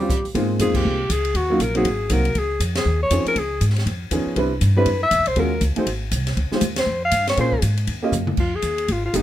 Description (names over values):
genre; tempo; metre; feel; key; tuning
jazz, small-group swing and bop; 239 BPM; 4/4; swing 60% on 8ths; Ab major; A4 = 440 Hz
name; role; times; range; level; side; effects
breathy alto saxophone; melody; 0.0-9.2 s; Eb4 to F5; -22 LUFS; left 2 dB; none
warm upright piano; accompaniment; 0.0-9.2 s; F3 to Eb5; -22 LUFS; right 1 dB; none
upright bass; bass; 0.0-9.2 s; G1 to Bb2; -22 LUFS; equal; none
open jazz drum kit; drums; 0.1-9.2 s; crash cymbal, hi-hat, kick drum, ride cymbal, rim click, snare drum, toms; -27 LUFS; equal; none
room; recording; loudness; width
light reverb; close, detailed microphones; -18 LUFS; side -12 dB against mid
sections
0.3-8.4 A section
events
band accent 0.7, 2.7, 6.7; drum fill 8.1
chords
0.3 Ab6; 1.4 Ebm9; 1.9 Ab9; 2.4 Dbmaj9; 3.4 Db9; 4.4 Cmaj9; 5.4 Ebm11; 5.9 Ab; 6.4 Dbmaj9#11; 7.4 Bbm9; 7.9 Eb9; 8.4 Fm9